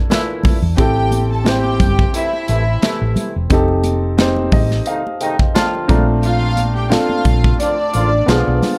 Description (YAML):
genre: lush 1970s-style soul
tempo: 88 BPM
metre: 4/4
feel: swing 54% on 16ths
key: unclear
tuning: A4 = 441 Hz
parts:
  - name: warm baby grand piano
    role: accompaniment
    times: 0.0-8.8 s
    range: A3 to Bb5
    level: -22 LUFS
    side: equal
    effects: none
  - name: mellow horn section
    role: stabs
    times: 0.1-8.8 s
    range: Bb2 to F4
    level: -26 LUFS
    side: equal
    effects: none
  - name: modern studio drum kit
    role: drums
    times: 0.1-8.8 s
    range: hi-hat, kick drum, snare drum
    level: -19 LUFS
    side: equal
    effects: none
  - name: congas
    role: percussion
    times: 0.1-8.8 s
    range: none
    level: -27 LUFS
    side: equal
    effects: none
  - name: hollow-body short-scale fingered electric bass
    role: bass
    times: 0.5-8.6 s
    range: E1 to E2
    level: -20 LUFS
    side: equal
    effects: none
  - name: warm symphonic violin section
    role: second line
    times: 0.8-8.6 s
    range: D4 to A5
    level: -23 LUFS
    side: equal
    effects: slapback echo
room: light reverb, small room ambience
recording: dark, warm production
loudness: -16 LUFS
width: mono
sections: 0.0-8.8 A section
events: grand piano fill 4.2-6.2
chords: 0.0 C13 (rootless); 0.8 Am7; 3.5 F9; 5.9 Bbmaj7